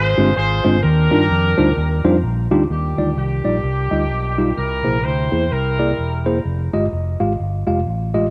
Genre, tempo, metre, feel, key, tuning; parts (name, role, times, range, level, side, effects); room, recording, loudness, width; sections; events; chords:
uptempo gospel; 128 BPM; 4/4; swing 60% on 8ths; Eb major; A4 = 440 Hz
warm horn section; melody; 0.0-6.4 s; Bb3 to C5; -24 LUFS; equal; cassette tape
fingered electric bass; bass; 0.0-8.3 s; E1 to G2; -23 LUFS; equal
mellow tine electric piano; accompaniment; 0.2-8.3 s; C3 to F5; -21 LUFS; equal
moderate spring reverb, RT60 2.8 s; home recording on cassette; -18 LUFS; mono
0.0-2.7 A section; 2.7-8.3 B section
0.0 Bb9 (rootless); 0.8 Ebmaj9; 4.6 C7b13; 6.5 Fm9